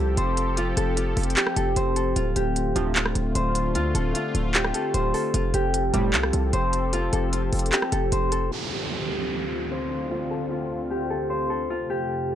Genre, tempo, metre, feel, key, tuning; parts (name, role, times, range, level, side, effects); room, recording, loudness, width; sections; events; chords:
hip hop, trap; 151 BPM; 4/4; half-time; D minor; A4 = 440 Hz
Celtic harp; melody; 0.0-12.3 s; F4 to C5; -26 LUFS; left 1 dB; low-pass filter, analog delay
sweeping resonant pad; sustained chords; 0.0-12.3 s; D2 to A4; -30 LUFS; left 2 dB; chorus, low-pass filter
hard-hitting 808-style bass; bass; 0.0-8.5 s; D1 to D2; -25 LUFS; equal
trap drum kit; drums; 0.2-8.4 s; handclaps, hi-hat, rim click; -26 LUFS; right 1 dB; vintage 12-bit sampler grit
chorused polysynth; stabs; 2.8-2.9, 5.9-6.1 s; C2 to G3; -27 LUFS; right 3 dB
downlifter; sound effects; 8.5-11.7 s; -33 LUFS; right 2 dB
digital ambience; dry, gritty hardware recording; -22 LUFS; side -10 dB against mid
0.0-8.5 A section; 8.5-12.3 B section
filter sweep 8.5-12.3
0.0 Fadd9; 2.2 Dm7; 5.3 Fadd9; 8.5 Dm7; 11.7 Fadd9